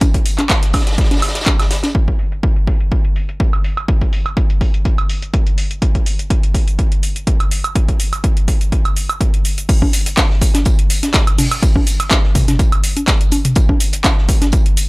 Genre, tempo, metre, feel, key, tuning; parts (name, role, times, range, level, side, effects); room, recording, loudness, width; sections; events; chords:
house; 124 BPM; 4/4; swing 54% on 16ths
booming analog drum machine; drums; 0.0-14.9 s; cabasa, congas, crash cymbal, handclaps, hi-hat, toms, woodblock; -19 LUFS; equal; low-pass filter on hats, low-pass filter on perc, low-pass filter on snare, low-pass filter on cymbals, low-pass filter on toms
electronic kick drum; drums; 0.0-14.6 s; -14 LUFS; equal; overdrive
warm soul drum kit; drums; 0.0-1.9, 9.7-14.9 s; hi-hat, snare drum, tambourine; -26 LUFS; equal; sidechain pumping on hats, high-pass filter on hats, high-pass filter on snare, sidechain pumping on perc, high-pass filter on perc, high-pass filter on room
small room ambience; -13 LUFS; side -25 dB against mid
0.0-1.9 A section; 1.9-9.7 B section; 9.7-14.9 C section
filter sweep on drum 1.9-9.7; drop 9.7-14.9